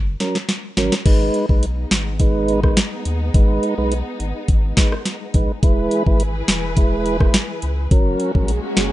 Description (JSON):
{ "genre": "dancehall", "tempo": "105 BPM", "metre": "4/4", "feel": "straight", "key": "G# minor", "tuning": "A4 = 440 Hz", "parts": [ { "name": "warm sub bass", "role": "bass", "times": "0.0-8.9 s", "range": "E1 to D#2", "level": "-23 LUFS", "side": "equal", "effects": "none" }, { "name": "tonewheel organ", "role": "accompaniment", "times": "0.2-8.5 s", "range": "F#3 to B4", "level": "-21 LUFS", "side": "right 2 dB", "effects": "overdrive, slow rotary speaker, sidechain pumping" }, { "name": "afro-pop drum kit", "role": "drums", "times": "0.2-8.9 s", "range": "crash cymbal, hi-hat, kick drum, rim click, snare drum", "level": "-17 LUFS", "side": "equal", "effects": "none" }, { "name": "warm studio string section", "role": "sustained chords", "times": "1.1-8.9 s", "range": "E3 to B4", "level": "-30 LUFS", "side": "left 1 dB", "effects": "sidechain pumping" }, { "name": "swell", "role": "sound effects", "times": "8.3-8.9 s", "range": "none", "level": "-26 LUFS", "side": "right 2 dB", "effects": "none" } ], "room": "digital ambience", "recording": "rough home demo mix, nothing above 10.5 kHz", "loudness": "-16 LUFS", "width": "side -15 dB against mid", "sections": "0.0-1.1 A section; 1.1-8.9 B section", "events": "drum fill 0.0-1.1; swell 8.3-8.9", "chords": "0.0 F#; 1.1 G#m; 5.6 E; 7.9 F#" }